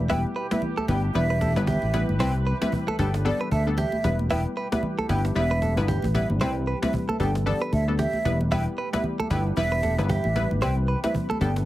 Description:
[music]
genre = afrobeats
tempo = 114 BPM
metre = 4/4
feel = swing 58% on 16ths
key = unclear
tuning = A4 = 440 Hz
[part]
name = analog pluck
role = accompaniment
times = 0.0-11.7 s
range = G3 to B4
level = -29 LUFS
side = left 2 dB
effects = chorus
[part]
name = deep dark ambient pad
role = sustained chords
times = 0.0-11.7 s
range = B2 to B4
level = -37 LUFS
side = right 1 dB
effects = chorus, built-in reverb
[part]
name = fingered electric bass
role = bass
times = 0.0-11.7 s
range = E1 to D2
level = -24 LUFS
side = equal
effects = none
[part]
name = mellow hollow concert flute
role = melody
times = 0.1-11.5 s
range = D5 to G5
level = -30 LUFS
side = right 2 dB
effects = tape echo
[part]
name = direct-recorded clean electric guitar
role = riff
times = 0.1-11.5 s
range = G4 to E5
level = -31 LUFS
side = right 3 dB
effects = tape echo
[part]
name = cajon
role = drums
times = 0.1-11.7 s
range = none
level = -34 LUFS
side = equal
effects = none
[part]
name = congas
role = percussion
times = 0.5-11.4 s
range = none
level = -32 LUFS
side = right 1 dB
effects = none
[sound]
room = light reverb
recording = heavily compressed radio sound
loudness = -22 LUFS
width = side -15 dB against mid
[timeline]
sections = 0.0-11.7 A section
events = hi-hats muted 4.3-6.4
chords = 0.0 Em; 2.2 Cmaj7; 3.0 Gadd9; 4.0 Em; 6.4 Cmaj7; 7.2 Gadd9; 8.3 Em; 10.6 Cmaj7

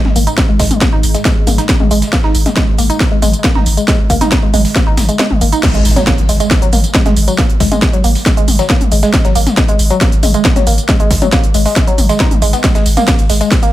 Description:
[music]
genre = driving peak-time techno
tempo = 137 BPM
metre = 4/4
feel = straight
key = unclear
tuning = A4 = 442 Hz
[part]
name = deep dark ambient pad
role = drone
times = 0.1-5.7 s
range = G#2 to G#3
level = -26 LUFS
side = left 2 dB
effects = chorus, built-in reverb, sidechain pumping
[part]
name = saturated sub bass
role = bass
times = 0.1-13.7 s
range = G#1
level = -16 LUFS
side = equal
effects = overdrive, sidechain pumping, low-pass filter
[part]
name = dusty soul sampler-style drum kit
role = drums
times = 0.1-13.6 s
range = hi-hat, shaker, snare drum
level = -28 LUFS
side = right 2 dB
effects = none
[part]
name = techno drum kit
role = drums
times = 0.1-13.7 s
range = crash cymbal, hi-hat, ride cymbal, snare drum, tambourine, toms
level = -16 LUFS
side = left 1 dB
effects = sidechain pumping on hats, sidechain pumping on toms, sidechain pumping on perc, sidechain pumping on cymbals
[part]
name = woody wave-folded pluck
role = riff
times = 0.2-13.7 s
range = F#3 to D#4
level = -16 LUFS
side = equal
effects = chorus, sidechain pumping, tape echo
[part]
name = electronic kick drum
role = drums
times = 0.4-13.6 s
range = none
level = -13 LUFS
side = equal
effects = none
[part]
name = impact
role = sound effects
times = 5.7-7.4 s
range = none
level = -21 LUFS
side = equal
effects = none
[sound]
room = light reverb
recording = none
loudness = -9 LUFS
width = side -14 dB against mid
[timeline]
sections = 0.0-5.6 A section; 5.6-13.7 B section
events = kick drops out 5.2-5.6; drop 5.6-13.7; impact 5.6-7.4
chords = 0.0 G#5; 5.6 N.C.

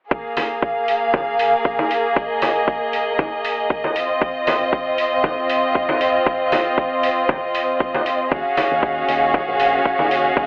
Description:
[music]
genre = nu-disco, nu disco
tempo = 117 BPM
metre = 4/4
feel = swing 55% on 16ths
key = unclear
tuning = A4 = 439 Hz
[part]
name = bright studio violin section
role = sustained chords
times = 0.1-10.5 s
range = Bb3 to F5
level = -21 LUFS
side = equal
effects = sidechain pumping
[part]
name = electronic kick drum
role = drums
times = 0.1-10.5 s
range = none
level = -22 LUFS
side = equal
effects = none
[part]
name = electronic hi-hat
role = drums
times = 0.4-10.2 s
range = none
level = -30 LUFS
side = equal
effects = none
[part]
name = congas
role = percussion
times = 0.4-10.1 s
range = none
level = -27 LUFS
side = equal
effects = none
[part]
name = fingered electric bass with an envelope filter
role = bass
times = 8.3-10.5 s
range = Bb1 to Eb2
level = -29 LUFS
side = equal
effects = sidechain pumping
[sound]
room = moderate echo chamber reverb, RT60 1.9 s, small room ambience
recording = dry, gritty hardware recording, telephone sound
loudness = -20 LUFS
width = mono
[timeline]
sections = 0.1-10.5 A section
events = none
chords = 0.1 Bb7sus4; 4.0 Cmadd11; 8.3 Ebm11

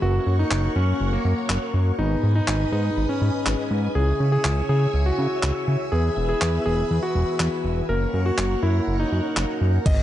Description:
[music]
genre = italo disco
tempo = 122 BPM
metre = 4/4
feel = straight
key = unclear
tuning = A4 = 440 Hz
[part]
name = warm electric grand piano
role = melody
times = 0.0-10.0 s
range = A#3 to D#5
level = -26 LUFS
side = equal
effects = digital delay
[part]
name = phased string machine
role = sustained chords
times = 0.0-10.0 s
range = D#3 to E6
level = -32 LUFS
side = equal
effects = ensemble chorus, phaser
[part]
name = analog synth brass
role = stabs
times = 0.0-9.8 s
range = G#2 to C#5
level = -30 LUFS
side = left 1 dB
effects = chorus
[part]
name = fat analog bass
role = bass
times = 0.0-10.0 s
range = E1 to C#3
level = -22 LUFS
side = equal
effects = none
[part]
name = clean 12-bit digital drum machine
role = drums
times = 0.5-10.0 s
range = crash cymbal, handclaps, hi-hat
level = -28 LUFS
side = equal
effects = none
[part]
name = electronic kick drum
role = drums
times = 9.9-10.0 s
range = none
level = -18 LUFS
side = equal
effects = none
[sound]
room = light reverb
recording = dark, warm production, nothing above 10.6 kHz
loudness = -20 LUFS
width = side -12 dB against mid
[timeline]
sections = 0.0-9.9 A section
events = filter sweep on analog polysynth 0.0-9.9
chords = 0.0 F#; 2.0 G#m; 4.0 C#m; 5.9 E; 7.9 F#

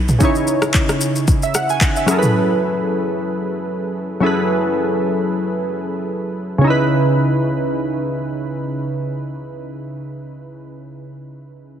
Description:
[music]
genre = amapiano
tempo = 112 BPM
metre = 4/4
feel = swing 55% on 16ths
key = C# minor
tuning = A4 = 440 Hz
[part]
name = glassy digital keys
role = accompaniment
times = 0.0-11.8 s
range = C#3 to G#5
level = -18 LUFS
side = equal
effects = chorus
[part]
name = deep house drum kit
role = drums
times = 0.1-2.3 s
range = handclaps, kick drum, rim click, shaker, toms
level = -17 LUFS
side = equal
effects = overdrive
[sound]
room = light reverb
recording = heavily compressed radio sound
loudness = -16 LUFS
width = side -9 dB against mid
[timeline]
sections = 0.0-6.6 A section; 6.6-10.9 B section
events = drop 0.0-6.6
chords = 0.0 C#m7; 2.1 F#m11; 6.6 C#m7

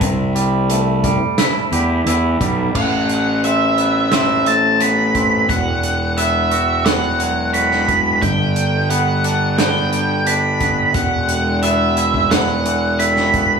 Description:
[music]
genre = post-rock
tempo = 88 BPM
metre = 4/4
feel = straight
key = A dorian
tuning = A4 = 440 Hz
[part]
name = twangy electric guitar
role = arpeggios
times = 0.0-13.6 s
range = E2 to G4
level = -22 LUFS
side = equal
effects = none
[part]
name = fuzz picked electric bass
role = bass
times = 0.0-13.6 s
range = E1 to E2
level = -18 LUFS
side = equal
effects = overdrive
[part]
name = loose indie drum kit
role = drums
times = 0.0-13.5 s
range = crash cymbal, hi-hat, kick drum, snare drum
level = -22 LUFS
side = right 2 dB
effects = none
[part]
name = octave-fuzz lead guitar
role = melody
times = 2.8-13.6 s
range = E5 to B5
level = -18 LUFS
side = right 1 dB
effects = distortion
[sound]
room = wet studio reverb, RT60 1.0 s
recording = band playing live in one room, small room ambience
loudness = -14 LUFS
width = side -6 dB against mid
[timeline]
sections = 0.0-2.8 A section; 2.8-13.6 B section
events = none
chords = 0.0 Am7/C; 2.8 Amadd9; 5.5 Esus2; 8.2 G; 11.0 Esus2

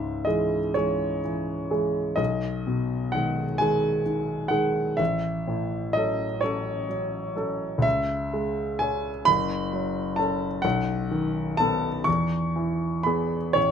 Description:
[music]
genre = classical, romantic nocturne for solo piano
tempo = 39-45 BPM (dotted quarters)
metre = 12/8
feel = rubato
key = C# minor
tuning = A4 = 445 Hz
[part]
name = clear grand piano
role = solo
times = 0.0-13.7 s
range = F#1 to C#6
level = -23 LUFS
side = equal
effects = none
[sound]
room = light reverb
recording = none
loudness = -23 LUFS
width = side -7 dB against mid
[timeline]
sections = 0.0-13.7 A section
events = none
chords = 0.0 C#m; 2.2 G#m/B; 5.0 F#m/A; 7.8 C#m; 9.3 F#m; 10.6 B7; 12.1 E

